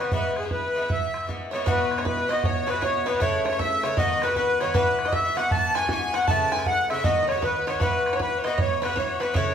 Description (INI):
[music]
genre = celtic folk, Celtic hornpipe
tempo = 156 BPM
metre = 4/4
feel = swing 63% on 8ths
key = E major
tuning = A4 = 436 Hz
[part]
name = accordion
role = melody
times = 0.0-9.5 s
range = G#4 to A5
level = -24 LUFS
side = equal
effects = light tremolo tuning
[part]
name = bright fiddle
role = second line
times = 0.0-9.5 s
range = G#4 to A5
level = -33 LUFS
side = left 2 dB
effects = none
[part]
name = Irish bouzouki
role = accompaniment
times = 0.0-9.5 s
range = G#2 to B4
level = -29 LUFS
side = left 3 dB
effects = none
[part]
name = bodhran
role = percussion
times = 0.1-9.5 s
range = none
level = -28 LUFS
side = right 2 dB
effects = none
[part]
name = bluegrass banjo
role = second line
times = 1.5-9.5 s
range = B4 to A5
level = -33 LUFS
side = right 2 dB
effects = none
[sound]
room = wet large studio reverb, RT60 1.2 s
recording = band playing live in one room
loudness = -21 LUFS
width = side -8 dB against mid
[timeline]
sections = 0.0-1.7 A section; 1.7-9.5 B section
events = none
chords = 0.1 E; 1.7 Esus2; 3.2 Aadd9; 4.0 B; 4.7 Esus2; 6.3 Aadd9; 7.0 B; 7.8 Esus2